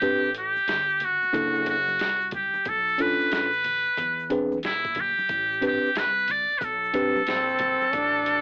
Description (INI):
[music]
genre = hip hop, jazz-hop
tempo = 91 BPM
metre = 4/4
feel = swing 65% on 16ths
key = A minor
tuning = A4 = 440 Hz
[part]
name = trumpet with metal mute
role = melody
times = 0.0-8.4 s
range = E4 to D5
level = -26 LUFS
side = equal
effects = none
[part]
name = tine electric piano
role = accompaniment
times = 0.0-7.2 s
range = A#3 to B4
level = -28 LUFS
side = equal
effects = cassette tape
[part]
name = upright bass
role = bass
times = 0.0-8.4 s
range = F#1 to E2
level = -43 LUFS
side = equal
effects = none
[part]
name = boom bap sampler-style drum kit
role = drums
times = 0.0-8.4 s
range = hi-hat, kick drum, snare drum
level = -36 LUFS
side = equal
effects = vintage 12-bit sampler grit
[part]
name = tube shaker and congas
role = percussion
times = 0.0-8.4 s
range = none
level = -49 LUFS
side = equal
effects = none
[part]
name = growling trombone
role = second line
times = 7.3-8.4 s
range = C4 to D4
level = -29 LUFS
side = equal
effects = cassette tape
[sound]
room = light reverb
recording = home recording on cassette, vinyl crackle, AM radio sound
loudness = -25 LUFS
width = mono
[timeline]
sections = 0.0-8.4 A section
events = none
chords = 0.0 Am11; 1.3 F#7alt; 2.7 Bm7b5; 4.0 E7b13; 5.3 Am11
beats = | 0.02 0.68 1.34 2.00 | 2.66 3.32 3.98 4.63 | 5.29 5.95 6.61 7.27 | 7.93